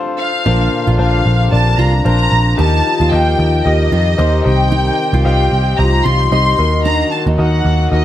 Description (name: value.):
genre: pop.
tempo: 113 BPM.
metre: 4/4.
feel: swing 56% on 16ths.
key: Bb major.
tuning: A4 = 440 Hz.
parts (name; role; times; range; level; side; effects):
warm concert grand piano; accompaniment; 0.0-8.0 s; Bb2 to F5; -20 LUFS; left 4 dB; none.
warm brass ensemble; sustained chords; 0.0-8.0 s; C3 to G4; -27 LUFS; right 2 dB; none.
fingerpicked steel-string acoustic guitar; riff; 0.0-7.6 s; D4 to F4; -23 LUFS; right 5 dB; none.
dark studio violin section; melody; 0.2-8.0 s; Eb5 to C6; -17 LUFS; left 1 dB; none.
dark French horn section; second line; 0.5-7.9 s; D3 to F4; -24 LUFS; left 2 dB; none.
vintage muted picked electric bass; bass; 0.5-8.0 s; Bb1 to F2; -13 LUFS; equal; none.
room: light reverb, small room ambience.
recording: none.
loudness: -11 LUFS.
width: side -12 dB against mid.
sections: 0.5-8.0 A section.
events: break 0.0-0.5; grand piano fill 0.0-0.5.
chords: 0.5 Bbadd9; 2.6 Eb; 4.5 Cm; 6.6 Ebm.